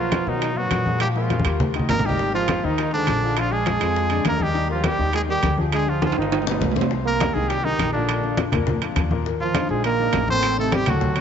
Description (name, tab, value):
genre	Afro-Cuban jazz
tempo	204 BPM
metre	4/4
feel	straight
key	Eb major, C minor from 6.9 s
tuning	A4 = 439 Hz
part	clear trumpet	melody	0.0-11.2 s	D4 to C5	-25 LUFS	equal	tape echo
part	mellow trombone	second line	0.0-11.2 s	D3 to C4	-27 LUFS	right 8 dB	none
part	warm concert grand piano	accompaniment	0.0-11.2 s	A2 to F#5	-28 LUFS	left 10 dB	none
part	upright bass	bass	0.0-11.2 s	G1 to B2	-26 LUFS	left 1 dB	none
part	bongos	percussion	0.1-11.2 s	none	-33 LUFS	left 13 dB	none
part	congas	percussion	0.1-11.2 s	none	-26 LUFS	left 1 dB	none
part	timbales	percussion	0.1-11.2 s	none	-29 LUFS	right 12 dB	none
room	moderate plate reverb, RT60 2.9 s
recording	1960s-style stereo with parts hard left and right, nothing above 7.7 kHz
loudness	-19 LUFS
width	side -8 dB against mid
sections	0.0-6.9 A section; 6.9-11.2 B section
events	drum fill 1.3-2.2, 6.0-6.9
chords	0.0 Bmaj7; 1.0 Bb5; 1.6 Eb; 2.2 Ab69; 3.4 Bb7; 4.5 Ebmaj7; 5.7 Ddim; 6.3 Gaug7; 6.9 Cm7; 8.1 Bb; 9.3 Ebsus2; 10.4 Adim